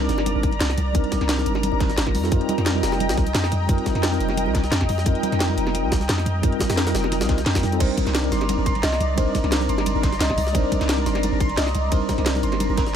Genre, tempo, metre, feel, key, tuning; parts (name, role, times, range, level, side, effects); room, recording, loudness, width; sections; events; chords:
liquid drum and bass; 175 BPM; 4/4; straight; C minor; A4 = 444 Hz
mellow tine electric piano; accompaniment; 0.0-12.8 s; G3 to Bb4; -25 LUFS; equal; medium stereo tremolo
lush unison pad; sustained chords; 0.0-13.0 s; D5 to Bb5; -29 LUFS; left 1 dB; chorus, phaser, sidechain pumping
long sustained 808-style bass; bass; 0.0-12.9 s; F1 to F2; -24 LUFS; equal
congas and bongos; percussion; 0.0-12.9 s; -33 LUFS; right 3 dB
drum and bass drum kit; drums; 0.1-12.9 s; crash cymbal, hi-hat, ride cymbal, snare drum; -28 LUFS; equal
jungle sampler-style drum kit; drums; 0.1-12.9 s; hi-hat, snare drum; -30 LUFS; equal; high-pass filter on snare, high-pass filter on hats
electronic kick drum; drums; 0.4-12.8 s; -23 LUFS; equal
harp-like synth pluck; arpeggios; 7.8-12.9 s; Bb4 to C6; -28 LUFS; right 2 dB; chorus, ping-pong delay
light reverb, digital ambience; -19 LUFS; side -8 dB against mid
0.0-7.8 A section; 7.8-13.0 A section
drop 0.0-7.8, 7.8-13.0
0.0 Cm9; 2.1 F9sus4; 7.8 Cm9